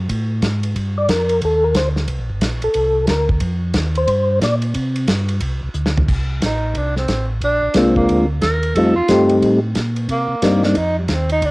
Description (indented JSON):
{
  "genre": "soul jazz organ trio",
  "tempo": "180 BPM",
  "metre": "4/4",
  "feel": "swing 63% on 8ths",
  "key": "F mixolydian",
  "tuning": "A4 = 440 Hz",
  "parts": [
    { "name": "mellow tonewheel organ", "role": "bass", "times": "0.0-11.5 s", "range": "G1 to C3", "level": "-20 LUFS", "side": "equal", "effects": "slow rotary speaker" },
    { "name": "warm soul drum kit", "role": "drums", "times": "0.1-11.5 s", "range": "crash cymbal, hi-hat, kick drum, ride cymbal, snare drum, toms", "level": "-22 LUFS", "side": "equal", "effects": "cassette tape" },
    { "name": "percussive tonewheel organ", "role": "melody", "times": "1.0-4.6, 7.8-10.8 s", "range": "G3 to D5", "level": "-15 LUFS", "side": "left 1 dB", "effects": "slow rotary speaker, chorus vibrato, cassette tape" },
    { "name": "breathy tenor saxophone", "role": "melody", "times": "6.4-11.5 s", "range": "G3 to Bb4", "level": "-20 LUFS", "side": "right 1 dB", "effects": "cassette tape" }
  ],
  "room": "light reverb",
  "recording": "home recording on cassette",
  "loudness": "-15 LUFS",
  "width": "side -22 dB against mid",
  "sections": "0.0-6.1 A section; 6.1-11.5 A section",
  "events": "tonewheel organ solo 0.0-6.1; drum fill 5.8-6.1; tenor saxophone solo 6.1-11.5",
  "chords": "0.0 D (rootless); 0.8 Gm7; 2.1 Csus2; 3.4 Fsus2; 5.4 Csus2; 6.1 Adim; 7.4 Bb9; 8.8 F9; 10.1 Cm7; 10.8 Eb69"
}